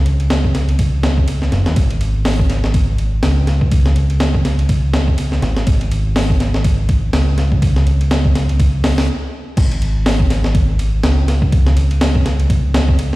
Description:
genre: breakbeat, breaks.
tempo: 123 BPM.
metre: 4/4.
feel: swing 58% on 16ths.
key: unclear.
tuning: A4 = 440 Hz.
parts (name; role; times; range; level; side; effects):
deep dub picked electric bass; bass; 0.0-13.2 s; F#1 to D#2; -15 LUFS; equal; tube saturation.
breakbeat sampler-style drum kit; drums; 0.1-13.2 s; crash cymbal, hi-hat, kick drum, ride cymbal, snare drum; -16 LUFS; equal; small room ambience.
room: digital ambience.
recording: played on a big sound system in a bare room, stone room reverb, vinyl crackle.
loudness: -13 LUFS.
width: side -19 dB against mid.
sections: 0.0-9.6 A section; 9.6-13.2 B section.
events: stop 9.1-9.6; drop 9.6-13.2.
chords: none.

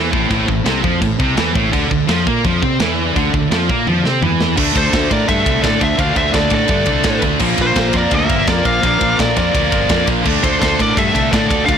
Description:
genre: heavy metal.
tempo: 169 BPM.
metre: 4/4.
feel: straight.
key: unclear.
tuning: A4 = 440 Hz.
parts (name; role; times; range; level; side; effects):
warm chamber string section; sustained chords; 0.0-11.8 s; D3 to D5; -30 LUFS; left 2 dB; none.
heavy high-gain guitar; riff; 0.0-11.8 s; A2 to D4; -21 LUFS; right 15 dB; distortion.
scooped high-gain guitar; riff; 0.0-11.8 s; A2 to D4; -21 LUFS; equal; distortion.
sludgy distorted guitar; riff; 0.0-11.8 s; A2 to D4; -24 LUFS; left 14 dB; overdrive.
fuzz fingered electric bass; bass; 0.0-11.8 s; G1 to C3; -20 LUFS; equal; overdrive.
tight metal drum kit; drums; 0.1-11.8 s; crash cymbal, kick drum, ride cymbal, snare drum, toms; -19 LUFS; equal; none.
high-gain lead guitar; melody; 4.8-11.8 s; C5 to F5; -18 LUFS; left 2 dB; distortion.
high-gain lead guitar; second line; 4.8-11.8 s; F4 to D5; -24 LUFS; right 2 dB; distortion.
room: little or no reverb.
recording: blown-out, overdriven recording, overdrive.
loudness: -13 LUFS.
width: side -8 dB against mid.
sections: 0.0-4.6 A section; 4.6-11.8 B section.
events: drum fill 3.9-4.6.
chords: 0.0 Am; 1.7 D5; 4.6 Dm; 7.4 Bb; 10.3 Dm.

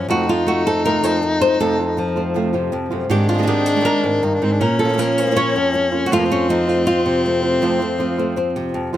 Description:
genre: flamenco.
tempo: 160 BPM.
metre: 4/4.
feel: straight.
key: unclear.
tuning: A4 = 438 Hz.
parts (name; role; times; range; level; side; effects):
flamenco guitar; melody; 0.0-9.0 s; F2 to Db5; -18 LUFS; equal; slapback echo.
breathy soprano saxophone; second line; 0.0-8.9 s; Bb3 to Eb4; -21 LUFS; left 2 dB; none.
flamenco guitar; stabs; 0.1-9.0 s; F2 to Ab4; -24 LUFS; right 5 dB; none.
room: little or no reverb.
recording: close, detailed microphones.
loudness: -16 LUFS.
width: side -12 dB against mid.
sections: 0.0-9.0 A section.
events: none.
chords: 0.1 F; 3.1 Ab; 4.6 Bbm; 6.1 F.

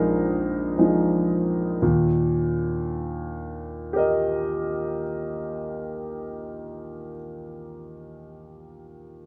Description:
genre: neoclassical minimalist piano.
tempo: 56 BPM.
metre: 3/4.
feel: rubato.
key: Eb major.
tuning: A4 = 440 Hz.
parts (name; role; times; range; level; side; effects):
warm concert grand piano; solo; 0.0-9.3 s; Bb1 to Eb5; -26 LUFS; equal; none.
room: moderate studio ambience, RT60 0.5 s.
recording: none.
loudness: -25 LUFS.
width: mono.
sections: 0.0-1.8 A section; 1.8-8.2 B section.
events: slowing down 0.0-1.8.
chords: 0.0 Bb7sus4; 1.8 Eb.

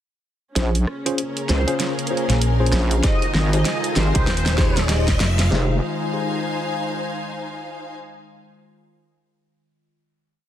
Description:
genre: glitch hop.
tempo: 97 BPM.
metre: 4/4.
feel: swing 61% on 16ths.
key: F minor.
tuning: A4 = 440 Hz.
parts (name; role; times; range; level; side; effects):
warbly tape-like pad; sustained chords; 1.0-5.8 s; Db3 to Ab4; -30 LUFS; left 2 dB; chorus, built-in reverb, vintage 12-bit sampler grit, sidechain pumping.
tine electric piano; stabs; 0.6-5.8 s; Db4 to Eb5; -27 LUFS; left 1 dB; overdrive, fast stereo tremolo, sidechain pumping, digital delay.
wobble bass; bass; 0.6-5.8 s; F1 to Db2; -19 LUFS; equal; chorus, overdrive.
pop drum kit; drums; 0.6-5.5 s; hi-hat, rim click, shaker, snare drum; -25 LUFS; equal; none.
riser; sound effects; 1.4-5.5 s; none; -32 LUFS; equal; none.
rich studio string section; texture; 0.6-7.9 s; Db4 to Ab5; -29 LUFS; left 1 dB; sidechain pumping.
sync lead; melody; 1.5-4.8 s; C5 to Eb5; -29 LUFS; equal; ensemble chorus, digital delay.
fingered electric bass; bass; 2.3-5.5 s; Eb1 to C2; -20 LUFS; equal; none.
pop drum kit; drums; 3.0-5.7 s; kick drum, snare drum; -22 LUFS; equal; none.
room: light reverb, digital ambience.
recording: dense, heavily limited modern master.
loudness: -18 LUFS.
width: side -11 dB against mid.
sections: 0.6-5.5 build; 5.5-8.0 final chord.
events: build-up 0.6-5.5; drum fill 0.6-5.5; riser 1.4-5.5.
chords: 0.6 Bbm7; 3.0 Fm7.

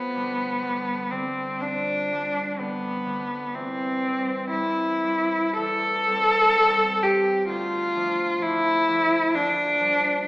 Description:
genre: classical, romantic duo for cello and harp.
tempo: 54-66 BPM.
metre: 4/4.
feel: rubato.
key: unclear.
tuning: A4 = 440 Hz.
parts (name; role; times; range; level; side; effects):
rich cello; melody; 0.0-10.3 s; B3 to A4; -21 LUFS; equal; none.
concert harp; accompaniment; 0.0-10.3 s; Bb1 to D4; -33 LUFS; equal; none.
room: wet recital hall reverb, RT60 1.5 s.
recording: recorded in a church or concert hall, AM radio sound.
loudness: -21 LUFS.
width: side -21 dB against mid.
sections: 0.0-10.3 A section.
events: none.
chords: 0.0 G7/F; 3.5 C/E; 7.5 Dm; 9.3 Gm7/Bb.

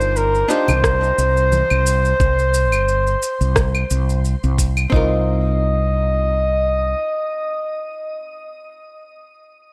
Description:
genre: sunset chillout.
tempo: 88 BPM.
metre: 4/4.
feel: swing 55% on 16ths.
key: C minor.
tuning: A4 = 440 Hz.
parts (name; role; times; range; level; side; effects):
mellow flugelhorn; melody; 0.0-8.4 s; Bb4 to Eb5; -22 LUFS; equal; tape echo, shimmer reverb.
archtop guitar, miked and amplified; accompaniment; 0.0-0.7, 4.9-8.7 s; C4 to Bb4; -28 LUFS; equal; digital delay, shimmer reverb.
mellow fretless electric bass; bass; 0.0-6.9 s; G1 to C2; -21 LUFS; equal; none.
electronic shaker, claves and rim click; drums; 0.0-4.9 s; none; -25 LUFS; equal; overdrive.
congas; percussion; 0.7-1.7 s; none; -30 LUFS; equal; none.
electronic kick drum; drums; 0.8-5.1 s; none; -22 LUFS; equal; none.
room: moderate concert hall reverb, RT60 2.1 s.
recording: none.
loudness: -18 LUFS.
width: mono.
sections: 0.0-4.9 A section; 4.9-7.7 B section.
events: none.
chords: 0.0 Cmadd9; 4.9 Cm7.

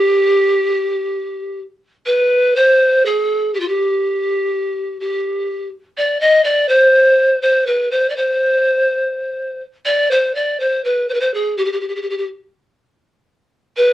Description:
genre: arabic.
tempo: 123 BPM.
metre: 4/4.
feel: straight.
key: G maqam hijaz.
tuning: A4 = 439 Hz.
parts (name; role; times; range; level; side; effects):
breathy pan flute; solo; 0.0-13.9 s; F4 to Eb5; -14 LUFS; equal; none.
room: moderate small room reverb, RT60 0.5 s.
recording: worn, warbling old tape, cassette tape, warbly pitch drift.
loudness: -14 LUFS.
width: side -14 dB against mid.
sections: 0.0-2.1 A section; 2.1-13.9 A section.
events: none.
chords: none.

